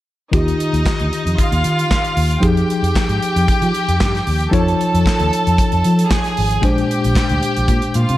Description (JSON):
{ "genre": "disco", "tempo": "114 BPM", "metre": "4/4", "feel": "straight", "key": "Eb major", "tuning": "A4 = 441 Hz", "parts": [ { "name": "clear chamber string section", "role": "second line", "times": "0.3-8.2 s", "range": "Eb4 to A5", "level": "-20 LUFS", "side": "right 1 dB", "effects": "analog delay" }, { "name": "mellow tine electric piano", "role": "accompaniment", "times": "0.3-8.2 s", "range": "Bb2 to C#5", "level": "-20 LUFS", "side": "left 2 dB", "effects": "medium stereo tremolo" }, { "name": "vintage muted fingered electric bass", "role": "bass", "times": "0.3-8.2 s", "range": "G#1 to F3", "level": "-18 LUFS", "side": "equal", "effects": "none" }, { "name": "modern studio drum kit", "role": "drums", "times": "0.3-8.2 s", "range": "handclaps, hi-hat, kick drum, snare drum", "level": "-20 LUFS", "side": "equal", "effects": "none" } ], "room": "small room ambience", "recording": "none", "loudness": "-14 LUFS", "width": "side -15 dB against mid", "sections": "0.3-8.2 A section", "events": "none", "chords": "0.3 Ebadd9; 2.4 Fm9; 4.5 F7alt; 6.6 Bb9" }